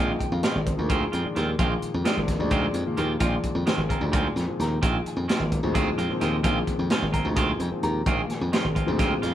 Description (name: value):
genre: electric jazz fusion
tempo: 260 BPM (eighths)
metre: 7/8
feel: straight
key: Bb mixolydian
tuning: A4 = 439 Hz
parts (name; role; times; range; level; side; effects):
- warm concert grand piano; accompaniment; 0.0-9.3 s; Bb2 to Bb5; -28 LUFS; left 2 dB; none
- clean electric guitar; stabs; 0.0-9.3 s; Eb3 to F4; -29 LUFS; right 4 dB; none
- glassy slap bass; bass; 0.0-9.3 s; Ab1 to F2; -27 LUFS; equal; none
- tight funk drum kit; drums; 0.2-9.3 s; hi-hat, kick drum, snare drum; -27 LUFS; equal; none
room: moderate studio reverb, RT60 0.7 s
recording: band playing live in one room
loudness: -22 LUFS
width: side -12 dB against mid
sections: 0.0-9.3 A section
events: grand piano fill 5.8-6.4, 9.0-9.3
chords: 0.0 Bb9sus4